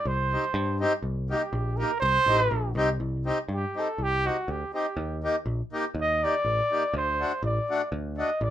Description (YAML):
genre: klezmer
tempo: 122 BPM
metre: 2/4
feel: straight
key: C dorian sharp4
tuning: A4 = 441 Hz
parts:
  - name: breathy cornet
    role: melody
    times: 0.0-8.5 s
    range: F#4 to Eb5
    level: -26 LUFS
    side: right 2 dB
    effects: none
  - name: picked electric bass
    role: bass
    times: 0.1-8.5 s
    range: A1 to G2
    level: -30 LUFS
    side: equal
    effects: none
  - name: accordion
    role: accompaniment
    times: 0.3-8.3 s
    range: A3 to G4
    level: -28 LUFS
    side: left 1 dB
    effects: none
room: moderate small room ambience, RT60 0.5 s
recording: minimal, uncompressed stereo recording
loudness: -24 LUFS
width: side -11 dB against mid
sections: 0.0-3.0 A section; 3.0-8.5 B section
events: cornet solo 3.0-8.5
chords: 0.0 Cm; 1.0 Eb/C; 2.0 Cm; 5.0 Eb; 7.0 D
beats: | 0.07 0.56 | 1.05 1.54 | 2.03 2.52 | 3.01 3.50 | 4.00 4.49 | 4.98 5.47 | 5.97 6.46 | 6.95 7.44 | 7.93 8.42